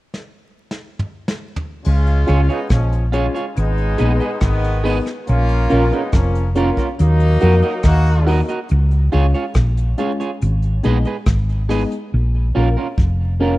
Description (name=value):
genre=roots reggae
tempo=70 BPM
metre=4/4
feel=straight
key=G# dorian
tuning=A4 = 441 Hz
part: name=soft brush drum kit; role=drums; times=0.1-13.2 s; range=crash cymbal, hi-hat, kick drum, rim click, snare drum, toms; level=-20 LUFS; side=equal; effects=vintage 12-bit sampler grit
part: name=clear horn section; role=second line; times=1.8-8.4 s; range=D#3 to F#4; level=-23 LUFS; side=equal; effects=none
part: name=hollow-body short-scale fingered electric bass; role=bass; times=1.9-13.5 s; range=E#1 to E#2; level=-15 LUFS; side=equal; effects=none
part: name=electric guitar at the edge of break-up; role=accompaniment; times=2.3-13.5 s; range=C#4 to D#5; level=-24 LUFS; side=right 4 dB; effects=none
part: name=dark upright piano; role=stabs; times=2.3-13.6 s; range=G#3 to C#5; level=-25 LUFS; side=left 3 dB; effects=none
room=small room reverb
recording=rough home demo mix, vinyl crackle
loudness=-15 LUFS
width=side -18 dB against mid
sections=0.0-1.8 A section; 1.8-13.6 B section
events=drum fill 0.1-1.8, 12.1-13.6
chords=0.0 N.C.; 1.8 C#; 3.6 G#m; 5.3 A#m; 7.0 D#m; 8.7 C#; 10.4 G#m; 12.1 A#m